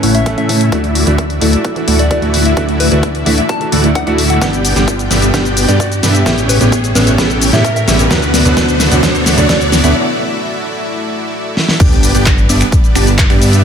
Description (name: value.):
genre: EDM, festival progressive house.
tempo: 130 BPM.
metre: 4/4.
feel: straight.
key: D major.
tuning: A4 = 440 Hz.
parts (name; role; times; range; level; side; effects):
bright concert grand piano; accompaniment; 0.0-9.9 s; F#2 to A4; -19 LUFS; right 3 dB; sidechain pumping, dub echo.
supersaw pad; sustained chords; 0.0-13.6 s; G3 to G5; -22 LUFS; equal; sidechain pumping.
dense compressed supersaw; riff; 0.0-13.6 s; A3 to A5; -15 LUFS; equal; sidechain pumping, low-pass filter, dub echo.
fat analog bass; bass; 0.0-13.6 s; G1 to A2; -15 LUFS; equal; sidechain pumping.
big-room dance drum kit; drums; 0.0-13.6 s; crash cymbal, finger snaps, handclaps, hi-hat, shaker, snare drum; -16 LUFS; left 1 dB; none.
riser and sub drop; sound effects; 1.3-13.6 s; none; -23 LUFS; equal; none.
soft struck synth lead; melody; 0.1-10.0 s; B4 to A5; -22 LUFS; left 2 dB; chorus, dub echo.
electronic kick drum; drums; 0.3-13.3 s; none; -14 LUFS; equal; high-pass filter on kick.
room: moderate concert hall reverb, RT60 1.8 s, digital ambience.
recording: none.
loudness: -10 LUFS.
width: side -7 dB against mid.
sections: 0.0-11.8 A section; 11.8-13.6 B section.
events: build-up 0.0-11.8; filter sweep on supersaw synth 0.0-11.8; riser 1.3-10.0; drum fill 4.4-10.0, 11.6; break 10.0-11.8; drop 11.8-13.6; impact 11.8-13.6.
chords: 0.0 A; 0.7 Dadd9; 4.4 G; 6.3 A; 8.1 Dadd9; 11.8 G.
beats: 0.26 | 0.72 1.19 1.65 2.11 | 2.57 3.03 3.49 3.95 | 4.42 4.88 5.34 5.80 | 6.26 6.72 7.18 7.65 | 8.11 8.57 9.03 9.49 | 9.95 10.42 10.88 11.34 | 11.80 12.26 12.72 13.19.